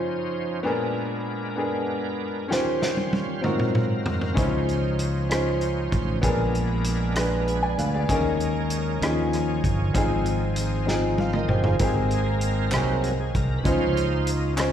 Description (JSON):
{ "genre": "slow gospel", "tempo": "65 BPM (dotted quarters)", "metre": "6/8", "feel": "straight", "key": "Ab major", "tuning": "A4 = 438 Hz", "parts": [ { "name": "bright concert grand piano", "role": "accompaniment", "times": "0.0-14.7 s", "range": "Ab2 to Ab5", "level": "-26 LUFS", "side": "left 2 dB", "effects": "slapback echo" }, { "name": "bright tonewheel organ", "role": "sustained chords", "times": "0.0-14.5 s", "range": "Eb2 to F5", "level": "-29 LUFS", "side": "right 4 dB", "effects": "slow rotary speaker, overdrive, chorus vibrato" }, { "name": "warm soul drum kit", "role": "drums", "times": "2.5-14.7 s", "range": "hi-hat, kick drum, rim click, snare drum, toms", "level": "-27 LUFS", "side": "equal", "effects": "none" }, { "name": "fingered electric bass", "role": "bass", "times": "4.4-14.7 s", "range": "G1 to Eb2", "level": "-25 LUFS", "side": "equal", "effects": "none" }, { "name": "group handclap", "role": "percussion", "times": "12.7-14.7 s", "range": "none", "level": "-33 LUFS", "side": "right 2 dB", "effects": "none" } ], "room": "small room ambience", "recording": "live gig heard through the venue's PA, recital hall reverb", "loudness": "-22 LUFS", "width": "side -9 dB against mid", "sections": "0.0-11.8 A section; 11.8-14.7 A section", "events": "drum fill 2.5-4.4, 10.9-11.8; tonewheel organ solo 11.8-14.7", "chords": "0.0 Dbmaj9; 0.6 Bb7b9; 2.5 Eb13; 3.4 Ab13; 4.4 Dbmaj9; 6.2 Bb7b9; 8.1 Eb7sus4; 9.0 Eb9sus4; 9.9 Ab6; 11.8 Abmaj9; 12.7 Ab7/C; 13.7 Dbmaj9" }